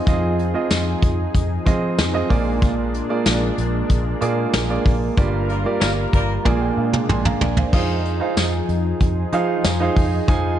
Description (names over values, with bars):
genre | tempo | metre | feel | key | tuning
1980s-style pop | 94 BPM | 4/4 | straight | F dorian | A4 = 440 Hz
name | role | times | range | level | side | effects
warm grand piano | accompaniment | 0.0-10.6 s | G2 to C6 | -22 LUFS | right 4 dB | none
lush unison pad | sustained chords | 0.0-10.6 s | F3 to Bb4 | -26 LUFS | left 2 dB | chorus
vintage muted fingered electric bass | bass | 0.1-10.6 s | G1 to F3 | -23 LUFS | left 1 dB | none
vintage brush drum kit | drums | 0.1-10.4 s | crash cymbal, hi-hat, kick drum, snare drum, tambourine, toms | -20 LUFS | equal | none
warm horn section | stabs | 5.5-6.3 s | G3 to Bb4 | -29 LUFS | left 2 dB | none
room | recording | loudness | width
light reverb, small room reverb | dark, warm production, nothing above 10.9 kHz | -17 LUFS | side -11 dB against mid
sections
0.0-7.7 A section; 7.7-10.6 A section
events
band accent 5.2-7.7; grand piano fill 5.8-7.7; drum fill 6.5-7.7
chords
0.0 Fm7; 2.3 Bb7; 5.2 Gm7; 6.5 Bb7; 7.7 Fm7